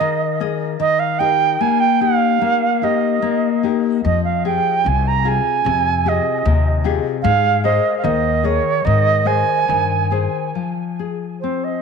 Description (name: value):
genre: fado-style ballad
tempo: 69-78 BPM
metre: 2/4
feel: rubato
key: Ab major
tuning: A4 = 441 Hz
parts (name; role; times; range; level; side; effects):
- reedy silver concert flute; melody; 0.0-11.8 s; C5 to Bb5; -18 LUFS; right 8 dB; tape echo
- nylon-string guitar; accompaniment; 0.0-11.8 s; C3 to Eb5; -20 LUFS; left 13 dB; none
- upright bass; bass; 4.0-10.3 s; C2 to Ab2; -19 LUFS; left 2 dB; none
room: moderate echo chamber reverb, RT60 1.5 s, small room ambience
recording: 1960s-style stereo with parts hard left and right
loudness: -15 LUFS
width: side -5 dB against mid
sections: 0.0-10.6 A section; 10.6-11.8 B section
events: none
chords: 0.0 Absus2; 0.8 Eb; 4.0 Fmadd9; 7.2 Abadd9; 10.6 Fm